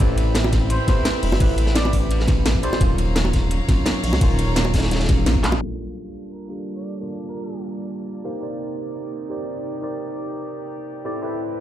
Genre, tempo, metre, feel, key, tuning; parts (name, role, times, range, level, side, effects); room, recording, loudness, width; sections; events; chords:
liquid drum and bass; 171 BPM; 4/4; straight; G minor; A4 = 440 Hz
tine electric piano; accompaniment; 0.0-11.6 s; Gb3 to A5; -27 LUFS; equal; wide subtle chorus, tape echo
rich chamber string section; sustained chords; 0.0-11.6 s; A2 to B5; -33 LUFS; equal; sidechain pumping, low-pass filter
smooth synth bass; bass; 0.0-5.6 s; Eb1 to Db2; -21 LUFS; equal
drum and bass drum kit; drums; 0.0-5.7 s; crash cymbal, handclaps, hi-hat, ride cymbal, snare drum; -27 LUFS; equal
electronic kick drum; drums; 0.0-5.4 s; -19 LUFS; equal
crunchy breakbeat drum kit; drums; 0.2-5.5 s; hi-hat, ride cymbal, snare drum; -29 LUFS; equal; high-pass filter on cymbals, high-pass filter on hats, high-pass filter on snare, high-pass filter on room
bongos; percussion; 0.4-5.6 s; -28 LUFS; equal
trumpet with cup mute; melody; 0.7-2.8, 6.3-7.6 s; Bb4 to D5; -32 LUFS; equal; vintage 12-bit sampler grit, tape echo
little or no reverb; played on a big sound system in a bare room, large studio reverb, low-pass filter; -19 LUFS; side -12 dB against mid
0.0-5.6 A section; 5.6-11.6 B section
drop 0.0-5.6; drum fill 5.4; band accent 5.4; filter sweep 5.6-11.6
0.0 Am9; 2.8 Ebm9; 5.6 Gm9; 8.2 Cm9; 11.1 Am9